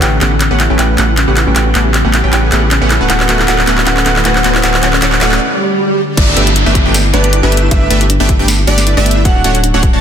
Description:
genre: future bass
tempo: 156 BPM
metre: 4/4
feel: swing 54% on 16ths, half-time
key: D major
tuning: A4 = 440 Hz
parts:
  - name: warm grand piano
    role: melody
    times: 0.0-9.5 s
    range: B4 to G5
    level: -22 LUFS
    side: right 1 dB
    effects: sidechain pumping, digital delay
  - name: ethereal airy pad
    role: sustained chords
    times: 0.0-6.1 s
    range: C#3 to F#4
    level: -23 LUFS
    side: left 1 dB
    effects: ensemble chorus, built-in reverb, sidechain pumping
  - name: thumb-piano-like synth pluck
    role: arpeggios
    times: 0.0-10.0 s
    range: B3 to F#4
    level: -22 LUFS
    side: left 4 dB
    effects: chorus, sidechain pumping, digital delay
  - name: supersaw stab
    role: riff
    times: 0.0-10.0 s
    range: A3 to A5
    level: -15 LUFS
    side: right 1 dB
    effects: sidechain pumping
  - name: saturated sub bass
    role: bass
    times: 0.0-10.0 s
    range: D1 to A1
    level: -14 LUFS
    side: equal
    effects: sidechain pumping
  - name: trap drum kit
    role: drums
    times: 0.0-9.9 s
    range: crash cymbal, handclaps, hi-hat, snare drum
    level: -14 LUFS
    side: equal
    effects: soft clipping on snare
  - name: riser, swell and downlifter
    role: sound effects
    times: 0.2-9.3 s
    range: none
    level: -19 LUFS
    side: right 1 dB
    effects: none
  - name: airy dreamy lead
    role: arpeggios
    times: 6.2-10.0 s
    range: D5 to A5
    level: -24 LUFS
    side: right 1 dB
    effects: chorus, phaser, sidechain pumping
  - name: electronic kick drum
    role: drums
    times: 6.2-9.9 s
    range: none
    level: -12 LUFS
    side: equal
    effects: none
room: light reverb, digital ambience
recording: dense, heavily limited modern master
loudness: -9 LUFS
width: side -8 dB against mid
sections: 0.0-6.2 A section; 6.2-10.0 B section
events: build-up 0.0-6.2; drum fill 0.0-5.4; riser 0.2-5.4; break 5.4-6.2; swell 5.4-6.2; drop 6.2-10.0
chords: 0.0 A13; 2.9 Dmaj7; 6.2 G69; 9.3 Dmaj7

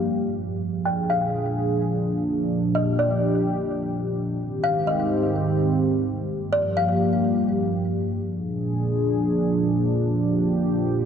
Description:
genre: hip hop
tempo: 127 BPM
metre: 4/4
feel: half-time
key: unclear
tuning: A4 = 440 Hz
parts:
  - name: kalimba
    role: melody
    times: 0.0-7.7 s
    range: D5 to G5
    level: -26 LUFS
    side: left 2 dB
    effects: low-pass filter, ping-pong delay
  - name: dark analog pad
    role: sustained chords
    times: 0.0-11.1 s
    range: G2 to Ab4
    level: -22 LUFS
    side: equal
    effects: chorus, low-pass filter
room: moderate lush hall reverb, RT60 3.0 s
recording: dark, warm production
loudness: -21 LUFS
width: side -8 dB against mid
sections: 0.0-8.2 A section; 8.2-11.1 B section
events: filter sweep 0.0-8.2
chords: 0.0 Gm7; 0.6 Bb7; 4.4 Abmaj7; 6.3 Gm7; 8.2 Bb7

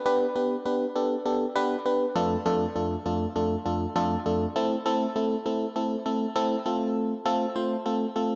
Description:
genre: pop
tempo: 100 BPM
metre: 4/4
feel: straight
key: A minor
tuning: A4 = 442 Hz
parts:
  - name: FM electric piano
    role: solo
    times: 0.1-8.4 s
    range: F2 to C5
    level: -27 LUFS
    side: equal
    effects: chorus, tape echo
room: wet plate reverb, RT60 2.4 s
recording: echo-heavy mix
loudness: -27 LUFS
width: mono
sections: 0.0-8.4 A section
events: none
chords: 0.0 G; 2.2 Dm/F; 4.6 Am; 6.7 F

